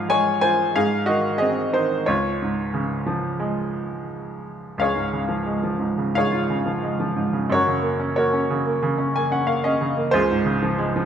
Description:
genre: classical, lyrical solo piano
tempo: 91 BPM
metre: 4/4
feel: rubato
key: Db major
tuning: A4 = 440 Hz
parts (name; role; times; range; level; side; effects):
- bright baby grand piano; solo; 0.0-11.1 s; Db2 to Ab5; -20 LUFS; equal; none
room: moderate concert hall reverb, RT60 2.1 s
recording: none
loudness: -20 LUFS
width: side -8 dB against mid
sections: 0.0-4.8 A section; 4.8-11.1 B section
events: grand piano fill 8.8-10.1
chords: 0.0 Db/Ab; 0.8 Ab; 2.1 Db; 7.5 Gb; 10.1 Dbmaj7

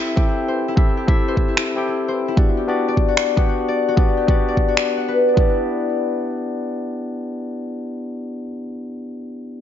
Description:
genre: future bass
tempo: 150 BPM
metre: 4/4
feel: swing 55% on 16ths, half-time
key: G major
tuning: A4 = 441 Hz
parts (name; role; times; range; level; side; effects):
- barky tine electric piano; accompaniment; 0.0-9.6 s; B3 to G5; -22 LUFS; left 2 dB; sidechain pumping, ping-pong delay
- concert harp; arpeggios; 0.0-8.0 s; E4 to F#5; -23 LUFS; left 4 dB; sidechain pumping, ping-pong delay
- electronic kick drum; drums; 0.2-5.5 s; none; -17 LUFS; equal; none
- electronic finger snaps; drums; 1.6-4.9 s; none; -22 LUFS; equal; none
room: light reverb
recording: nothing above 7.5 kHz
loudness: -17 LUFS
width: side -10 dB against mid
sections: 0.0-5.6 A section; 5.6-8.8 B section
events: none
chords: 0.0 Am7; 2.4 Gmaj7/B; 5.4 G6

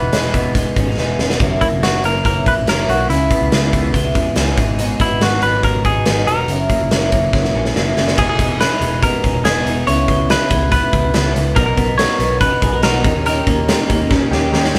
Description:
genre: jangly indie pop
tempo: 142 BPM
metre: 4/4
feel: straight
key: unclear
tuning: A4 = 440 Hz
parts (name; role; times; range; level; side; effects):
- semi-hollow electric guitar; melody; 0.0-14.5 s; E4 to C#5; -22 LUFS; equal; none
- picked twelve-string acoustic guitar; accompaniment; 0.0-14.8 s; G#2 to B4; -25 LUFS; equal; none
- electric guitar through a small old amp; arpeggios; 0.0-14.8 s; F#2 to A#4; -25 LUFS; equal; none
- vintage muted picked electric bass; bass; 0.0-14.8 s; E1 to E2; -23 LUFS; equal; none
- big rock drum kit; drums; 0.1-14.8 s; crash cymbal, hi-hat, kick drum, snare drum; -20 LUFS; equal; none
- warm analog keys; accompaniment; 11.6-14.8 s; B3 to A#4; -24 LUFS; equal; chorus
room: wet small room reverb, RT60 0.5 s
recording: band playing live in one room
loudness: -16 LUFS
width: mono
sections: 0.0-8.2 A section; 8.2-14.8 B section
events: drum fill 1.0-1.4, 7.3-8.2, 14.1-14.8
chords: 0.0 Emaj7; 1.4 F#7; 3.1 C#m7; 4.6 G#m7; 6.5 F#7; 8.2 Emaj7; 9.9 C#m7; 11.6 Bmaj7; 13.1 D#7

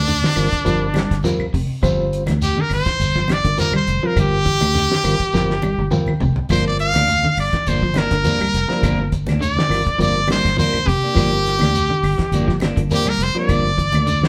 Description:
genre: afrobeat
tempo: 103 BPM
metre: 4/4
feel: swing 54% on 16ths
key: G dorian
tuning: A4 = 440 Hz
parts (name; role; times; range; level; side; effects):
- brilliant trumpet; melody; 0.0-14.2 s; D4 to F5; -22 LUFS; equal; none
- electric guitar at the edge of break-up; arpeggios; 0.0-14.3 s; C3 to G3; -28 LUFS; equal; none
- fingered electric bass; bass; 0.0-14.2 s; F1 to D2; -24 LUFS; equal; none
- damped 70s drum kit; drums; 0.1-14.3 s; hi-hat, kick drum, snare drum, toms; -26 LUFS; equal; none
- congas; percussion; 0.1-14.3 s; none; -28 LUFS; equal; none
- shekere; percussion; 0.1-14.2 s; none; -30 LUFS; equal; none
- overdriven reed electric piano; accompaniment; 0.4-13.7 s; G3 to G5; -28 LUFS; equal; tremolo
- claves; percussion; 0.4-14.1 s; none; -39 LUFS; equal; none
- clean electric guitar; stabs; 6.5-14.3 s; F3 to D4; -29 LUFS; equal; none
room: moderate studio reverb, RT60 0.7 s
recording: band playing live in one room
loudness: -18 LUFS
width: mono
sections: 0.0-14.3 A section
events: trumpet solo 0.0-14.3; drum fill 5.3-6.5; reed electric piano fill 5.6-6.5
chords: 0.0 Gm7

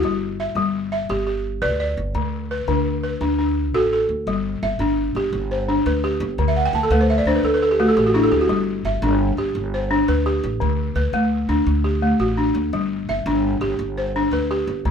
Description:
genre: west african traditional, West African string and xylophone music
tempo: 113 BPM (dotted quarters)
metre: 12/8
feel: straight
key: G major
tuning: A4 = 440 Hz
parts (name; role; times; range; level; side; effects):
- balafon; arpeggios; 0.0-14.9 s; D3 to A5; -19 LUFS; left 1 dB; none
- upright bass; bass; 0.0-14.9 s; G1 to D2; -24 LUFS; equal; none
room: light reverb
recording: none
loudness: -18 LUFS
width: side -7 dB against mid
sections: 0.0-4.3 A section; 4.3-14.9 B section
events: balafon fill 6.5-8.5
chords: 0.0 G; 2.2 D; 4.3 G; 6.4 D5; 8.5 G; 10.6 D; 12.7 G

